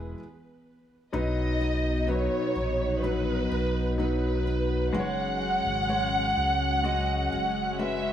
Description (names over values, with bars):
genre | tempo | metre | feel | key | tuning
pop ballad | 63 BPM | 4/4 | straight | B major | A4 = 440 Hz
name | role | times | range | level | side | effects
dark studio violin section | melody | 0.0-8.1 s | B4 to F#5 | -29 LUFS | right 1 dB | tape echo
clear concert grand piano | accompaniment | 0.0-8.1 s | C#3 to D#5 | -31 LUFS | left 3 dB | none
picked steel-string acoustic guitar | arpeggios | 0.0-8.1 s | B2 to B4 | -39 LUFS | right 3 dB | none
sub bass with octave | bass | 0.0-8.1 s | E1 to C#2 | -30 LUFS | equal | none
lush unison pad | sustained chords | 1.1-8.1 s | F#3 to D#4 | -34 LUFS | equal | chorus
room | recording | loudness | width
light reverb, small room ambience | echo-heavy mix, studio reverb | -25 LUFS | side -10 dB against mid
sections
0.0-1.1 A section; 1.1-8.1 B section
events
stop 0.2-1.1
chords
0.0 E; 1.1 B; 4.9 F#sus2